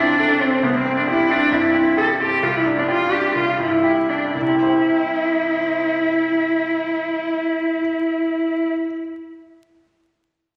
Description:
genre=quick classical-period movement for piano quartet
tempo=116-137 BPM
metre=4/4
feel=rubato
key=C major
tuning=A4 = 440 Hz
part: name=clear cello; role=second line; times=0.0-8.6 s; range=B3 to A4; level=-20 LUFS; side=equal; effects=none
part: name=bright grand piano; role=accompaniment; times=0.0-9.0 s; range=C2 to G5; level=-27 LUFS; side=equal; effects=none
room=wet scoring stage reverb, RT60 1.6 s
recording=vinyl crackle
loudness=-19 LUFS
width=mono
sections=0.0-4.3 A section; 4.3-8.3 B section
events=slowing down 0.0-4.3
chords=0.0 Csus2; 0.6 C; 2.4 G5/C; 4.3 C

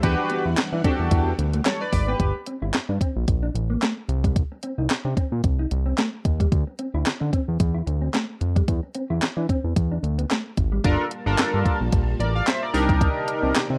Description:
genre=early-eighties boogie funk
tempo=111 BPM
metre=4/4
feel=swing 56% on 16ths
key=unclear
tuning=A4 = 445 Hz
part: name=chorused polysynth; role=accompaniment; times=0.0-2.3, 10.8-13.6 s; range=D4 to F5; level=-27 LUFS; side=equal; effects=none
part: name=string machine, full ensemble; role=sustained chords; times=0.0-2.2, 10.8-13.8 s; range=C3 to A5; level=-37 LUFS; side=equal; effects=ensemble chorus
part: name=fat analog bass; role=bass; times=0.0-13.8 s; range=G1 to E3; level=-26 LUFS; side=equal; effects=none
part: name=crisp 8-bit digital drum machine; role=drums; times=0.0-13.7 s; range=handclaps, hi-hat, kick drum, snare drum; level=-25 LUFS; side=equal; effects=overdrive
part: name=mellow electric guitar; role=riff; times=0.2-10.8 s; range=G3 to E4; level=-33 LUFS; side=equal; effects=analog chorus
room=light reverb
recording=dark, warm production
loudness=-23 LUFS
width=mono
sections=0.0-2.2 A section; 2.2-10.8 B section; 10.8-13.8 A section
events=none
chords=0.0 Em9; 2.2 Gmadd9; 4.1 Cm; 6.5 Dm9; 8.7 E7(no3); 10.8 Gm9; 12.7 Cm9

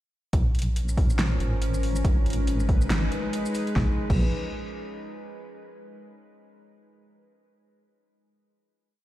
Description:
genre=deep dubstep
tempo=140 BPM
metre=4/4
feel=swing 58% on 16ths, half-time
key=Bb phrygian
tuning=A4 = 440 Hz
part: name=bowed-like drone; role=sustained chords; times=0.7-4.0 s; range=F3 to Cb5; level=-32 LUFS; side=left 1 dB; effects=built-in reverb
part: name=deep soft wobble bass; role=bass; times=0.3-4.3 s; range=Ab1 to Bb1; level=-26 LUFS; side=equal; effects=chorus
part: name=deep house drum kit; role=drums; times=0.3-4.2 s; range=crash cymbal, hi-hat, shaker, snare drum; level=-32 LUFS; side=equal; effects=none
part: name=electronic kick drum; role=drums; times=0.3-4.2 s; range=none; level=-23 LUFS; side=equal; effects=none
room=light reverb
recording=played on a big sound system in a bare room, large studio reverb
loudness=-23 LUFS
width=side -14 dB against mid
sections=0.3-3.8 build; 3.8-5.5 final chord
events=build-up 0.3-3.8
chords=0.3 Bbm; 2.0 Abm; 3.8 Bbm

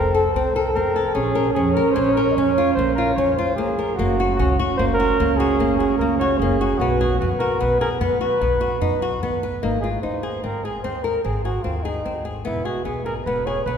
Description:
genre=contemporary instrumental, chamber music in an uneven meter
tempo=149 BPM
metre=7/4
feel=straight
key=unclear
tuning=A4 = 437 Hz
part: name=mellow flugelhorn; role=melody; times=0.0-13.8 s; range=Eb4 to Eb5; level=-23 LUFS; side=right 1 dB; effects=none
part: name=mellow French horn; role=second line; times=0.0-9.4 s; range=B3 to Db4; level=-24 LUFS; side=right 4 dB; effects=none
part: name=flamenco guitar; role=arpeggios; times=0.0-13.8 s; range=Bb3 to B4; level=-23 LUFS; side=left 3 dB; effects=none
part: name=upright bass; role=bass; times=0.0-13.8 s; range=E1 to F#2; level=-26 LUFS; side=equal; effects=none
room=wet cathedral reverb, RT60 4.3 s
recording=recorded in a church or concert hall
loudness=-18 LUFS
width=side -7 dB against mid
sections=0.0-9.6 A section; 9.6-13.8 B section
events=none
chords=0.0 F; 1.2 Bbm7; 4.0 Gb; 6.8 B; 9.6 Ab; 12.5 E

